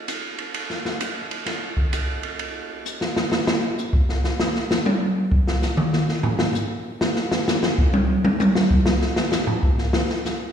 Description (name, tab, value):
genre	jazz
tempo	130 BPM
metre	4/4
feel	swing 66% on 8ths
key	none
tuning	none
part	open jazz drum kit	drums	0.1-10.4 s	hi-hat, kick drum, ride cymbal, snare drum, toms	-20 LUFS	equal	slapback echo
room	moderate lush hall reverb, RT60 1.7 s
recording	live gig heard through the venue's PA, recital hall reverb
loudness	-20 LUFS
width	side -8 dB against mid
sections	0.0-3.3 A section; 3.3-10.5 B section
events	drum fill 2.8-3.3; drum solo 3.3-10.5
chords	none